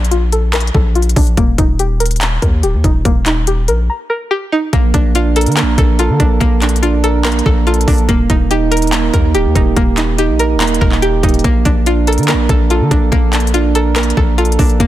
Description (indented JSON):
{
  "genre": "hip hop, trap",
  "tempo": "143 BPM",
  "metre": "4/4",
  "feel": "half-time",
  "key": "Bb major",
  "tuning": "A4 = 441 Hz",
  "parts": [
    { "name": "string-like resonator pluck", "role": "accompaniment", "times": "0.0-14.9 s", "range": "Bb3 to Bb5", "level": "-18 LUFS", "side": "left 2 dB", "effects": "chorus, low-pass filter" },
    { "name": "hard-hitting 808-style bass", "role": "bass", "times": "0.0-14.9 s", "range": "D1 to D3", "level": "-15 LUFS", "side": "equal", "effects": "none" },
    { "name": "trap drum kit", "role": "drums", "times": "0.0-14.9 s", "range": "handclaps, hi-hat, kick drum", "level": "-15 LUFS", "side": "equal", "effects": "none" },
    { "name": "soft electric-piano-like synth keys", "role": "arpeggios", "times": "4.7-14.9 s", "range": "Bb3 to Bb4", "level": "-16 LUFS", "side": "right 7 dB", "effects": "chorus, low-pass filter, tape echo" }
  ],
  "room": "digital ambience",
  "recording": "dense, heavily limited modern master",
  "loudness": "-11 LUFS",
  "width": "side -13 dB against mid",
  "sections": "0.0-14.9 A section",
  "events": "filter sweep 0.0-4.7; break 3.9-4.7",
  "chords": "0.0 Bbmaj7; 1.4 Eb; 4.7 Bbmaj7; 8.1 Eb; 11.4 Bbmaj7"
}